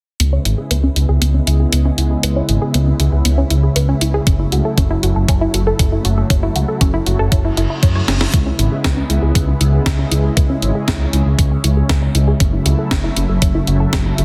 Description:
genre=synthwave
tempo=118 BPM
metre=4/4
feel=straight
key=C# minor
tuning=A4 = 440 Hz
part: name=analog string pad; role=sustained chords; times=0.2-14.2 s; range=C#3 to E4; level=-24 LUFS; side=equal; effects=ensemble chorus, sidechain pumping
part: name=analog pluck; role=arpeggios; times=0.2-14.2 s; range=B3 to C#5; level=-26 LUFS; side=equal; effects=chorus, phaser, tape echo
part: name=dark detuned saw bass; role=bass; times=0.2-14.2 s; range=F#1 to F#2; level=-18 LUFS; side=equal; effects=tube saturation
part: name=clean 12-bit digital drum machine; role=drums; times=0.2-14.2 s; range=hi-hat, snare drum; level=-23 LUFS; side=equal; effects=none
part: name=electronic kick drum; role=drums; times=4.3-14.0 s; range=none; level=-18 LUFS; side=equal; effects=none
part: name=reverse cymbal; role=sound effects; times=7.5-8.3 s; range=none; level=-30 LUFS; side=equal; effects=none
room=light reverb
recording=dense, heavily limited modern master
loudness=-15 LUFS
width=mono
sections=0.2-8.3 A section; 8.3-14.2 B section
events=filter sweep on detuned saw bass 0.2-8.3; filter sweep on synth arpeggio sound 0.2-8.3, 8.3-14.2; reverse cymbal 7.5-8.3; drum fill 8.1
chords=0.2 C#m7; 4.3 F#m7; 8.3 C#m7; 12.4 F#m7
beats=| 0.20 0.71 1.22 1.73 | 2.23 2.74 3.25 3.76 | 4.27 4.78 5.29 5.79 | 6.30 6.81 7.32 7.83 | 8.34 8.84 9.35 9.86 | 10.37 10.88 11.39 11.89 | 12.40 12.91 13.42 13.93

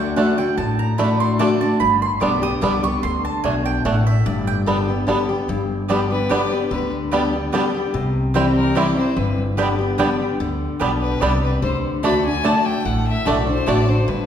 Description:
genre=bluegrass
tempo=147 BPM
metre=3/4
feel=straight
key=G major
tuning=A4 = 441 Hz
part: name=picked steel-string acoustic guitar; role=accompaniment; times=0.0-14.3 s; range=G2 to G4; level=-20 LUFS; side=left 2 dB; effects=none
part: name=mandolin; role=stabs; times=0.0-13.8 s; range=A3 to Eb6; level=-25 LUFS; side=right 5 dB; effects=none
part: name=upright bass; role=bass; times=0.0-14.3 s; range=G1 to D2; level=-24 LUFS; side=equal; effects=none
part: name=bluegrass banjo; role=arpeggios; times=0.2-13.8 s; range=G3 to E4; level=-24 LUFS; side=right 2 dB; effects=none
part: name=clear fiddle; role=second line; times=6.1-14.3 s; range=Bb4 to B5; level=-25 LUFS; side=left 3 dB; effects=none
room=wet recital hall reverb, RT60 1.7 s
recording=recorded in a church or concert hall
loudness=-17 LUFS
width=side -9 dB against mid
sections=0.0-5.5 A section; 5.5-14.3 A section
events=mandolin solo 0.0-5.5; fiddle solo 5.5-14.3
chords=0.0 D; 1.8 G; 3.0 D5; 4.3 G; 7.9 C; 9.2 G; 11.6 D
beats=0.17 | 0.58 0.99 1.40 | 1.80 2.21 2.62 | 3.03 3.44 3.85 | 4.26 4.67 5.08 | 5.49 5.90 6.30 | 6.71 7.12 7.53 | 7.94 8.35 8.76 | 9.17 9.58 9.99 | 10.40 10.81 11.22 | 11.62 12.04 12.44 | 12.85 13.26 13.67 | 14.08

